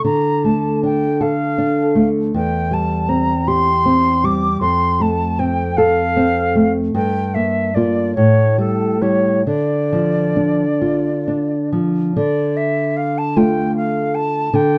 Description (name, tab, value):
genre	romantic duo for flute and classical guitar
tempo	44-54 BPM (dotted quarters)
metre	6/8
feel	rubato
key	D minor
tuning	A4 = 440 Hz
part	silver concert flute	melody	0.0-14.8 s	A4 to D6	-22 LUFS	equal	none
part	nylon-string guitar	accompaniment	0.0-14.8 s	E2 to A4	-19 LUFS	equal	none
room	moderate studio reverb, RT60 0.5 s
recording	dark, warm production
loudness	-17 LUFS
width	mono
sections	0.0-12.2 A section; 12.2-14.8 A section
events	none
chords	0.0 Dm; 2.3 C/E; 4.6 F; 6.9 Gm7; 8.2 A5; 9.5 Dm